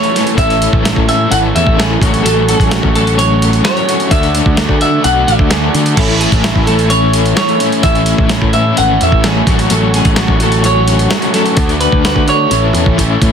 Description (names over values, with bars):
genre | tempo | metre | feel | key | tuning
indie rock | 129 BPM | 4/4 | straight | A major | A4 = 443 Hz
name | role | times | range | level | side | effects
semi-hollow electric guitar | melody | 0.0-12.9 s | G#4 to F#5 | -16 LUFS | equal | lush chorus, analog delay
combo organ | sustained chords | 0.0-13.3 s | A3 to C#6 | -26 LUFS | left 1 dB | none
crunchy overdriven guitar | riff | 0.0-13.3 s | A2 to F#4 | -17 LUFS | right 6 dB | analog chorus, analog delay
overdriven electric guitar | riff | 0.0-13.3 s | A2 to A4 | -18 LUFS | left 13 dB | tremolo
dusty soul sampler-style drum kit | drums | 0.0-13.3 s | crash cymbal, hi-hat, kick drum, snare drum | -15 LUFS | equal | none
picked electric bass | bass | 0.4-13.3 s | G#1 to D3 | -15 LUFS | equal | none
room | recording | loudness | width
light reverb | dense, heavily limited modern master | -9 LUFS | side -7 dB against mid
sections
0.0-13.3 A section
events
drum fill 13.0-13.3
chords
0.0 Amaj7; 2.0 F#m/A; 4.1 D6; 6.0 Amaj7; 9.5 F#m/A; 11.6 D6; 12.5 Amaj7